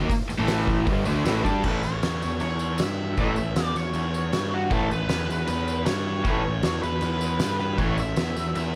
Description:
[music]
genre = garage rock duo or trio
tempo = 156 BPM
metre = 4/4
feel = straight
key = A mixolydian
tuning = A4 = 440 Hz
[part]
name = raw garage guitar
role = riff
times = 0.0-8.0 s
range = G2 to G4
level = -28 LUFS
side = equal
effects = overdrive
[part]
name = fuzz picked electric bass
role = bass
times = 0.0-8.8 s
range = G1 to G2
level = -30 LUFS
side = equal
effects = overdrive
[part]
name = oversized low-tuned drum kit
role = drums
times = 0.1-8.6 s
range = crash cymbal, hi-hat, kick drum, snare drum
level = -30 LUFS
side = equal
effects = none
[part]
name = tambourine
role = percussion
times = 0.1-8.6 s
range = none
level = -45 LUFS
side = equal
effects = none
[part]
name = octave-fuzz lead guitar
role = melody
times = 1.4-8.8 s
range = F#4 to E5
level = -33 LUFS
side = equal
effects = distortion
[sound]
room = light reverb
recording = none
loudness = -25 LUFS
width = mono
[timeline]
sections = 0.0-1.6 A section; 1.6-8.8 B section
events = none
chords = 0.0 A5; 1.6 A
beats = | 0.10 0.49 0.87 1.26 | 1.64 2.02 2.41 2.79 | 3.18 3.56 3.95 4.33 | 4.72 5.10 5.49 5.87 | 6.25 6.64 7.02 7.41 | 7.79 8.18 8.56

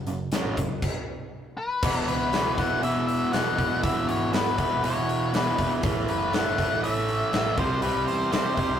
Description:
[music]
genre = classic rock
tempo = 120 BPM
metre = 4/4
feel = straight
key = E major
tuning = A4 = 440 Hz
[part]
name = crunchy overdriven guitar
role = riff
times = 0.0-8.8 s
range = E2 to C4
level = -27 LUFS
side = right 2 dB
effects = none
[part]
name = tight distorted guitar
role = riff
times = 0.0-8.8 s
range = E2 to C4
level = -35 LUFS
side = left 4 dB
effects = distortion
[part]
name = picked electric bass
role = bass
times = 0.1-8.8 s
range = E1 to E2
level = -34 LUFS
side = equal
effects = none
[part]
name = big rock drum kit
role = drums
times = 0.1-8.7 s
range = crash cymbal, hi-hat, kick drum, snare drum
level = -29 LUFS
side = equal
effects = none
[part]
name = octave-fuzz lead guitar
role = melody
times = 1.6-8.8 s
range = B4 to F#5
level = -28 LUFS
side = left 3 dB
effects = distortion
[part]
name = picked steel-string acoustic guitar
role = accompaniment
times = 1.8-8.8 s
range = C3 to A4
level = -40 LUFS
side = left 3 dB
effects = none
[part]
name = bright tonewheel organ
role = sustained chords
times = 1.8-8.8 s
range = E4 to F5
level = -42 LUFS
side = left 1 dB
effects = none
[sound]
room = moderate small room reverb, RT60 0.5 s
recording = rough rehearsal-room recording, tube saturation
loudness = -23 LUFS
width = side -9 dB against mid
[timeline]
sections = 0.0-1.8 A section; 1.8-8.8 B section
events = stop 0.8-1.8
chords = 0.0 F#m; 0.8 N.C.; 1.8 E; 5.8 Asus2; 7.6 C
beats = 0.33 0.83 1.33 | 1.84 2.34 2.84 3.34 | 3.84 4.34 4.84 5.34 | 5.84 6.33 6.83 7.33 | 7.83 8.33

